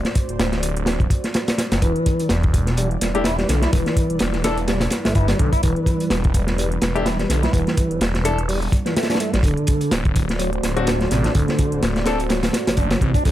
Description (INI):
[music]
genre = breakbeat, breaks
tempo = 126 BPM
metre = 4/4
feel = swing 56% on 16ths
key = E minor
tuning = A4 = 437 Hz
[part]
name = dark analog pad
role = sustained chords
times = 0.0-13.3 s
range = G3 to D5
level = -28 LUFS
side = right 1 dB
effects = chorus, vintage 12-bit sampler grit, sidechain pumping
[part]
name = crunchy breakbeat drum kit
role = drums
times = 0.0-13.3 s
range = hi-hat, kick drum, snare drum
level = -20 LUFS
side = equal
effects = none
[part]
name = electronic hi-hat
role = drums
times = 0.0-13.3 s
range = none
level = -34 LUFS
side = right 1 dB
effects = overdrive
[part]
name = phased detuned saw bass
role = bass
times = 0.3-13.3 s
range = D1 to B1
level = -22 LUFS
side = equal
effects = phaser
[part]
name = tonewheel organ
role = riff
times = 1.8-13.3 s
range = C3 to E4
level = -24 LUFS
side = equal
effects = slow rotary speaker, overdrive, vintage 12-bit sampler grit, tape echo
[part]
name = warm grand piano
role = stabs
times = 3.1-12.2 s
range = C4 to A4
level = -26 LUFS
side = left 4 dB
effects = tape echo
[sound]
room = light reverb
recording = none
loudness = -17 LUFS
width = side -13 dB against mid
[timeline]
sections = 0.0-13.3 A section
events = none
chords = 0.0 D7; 1.8 Em7; 9.4 D7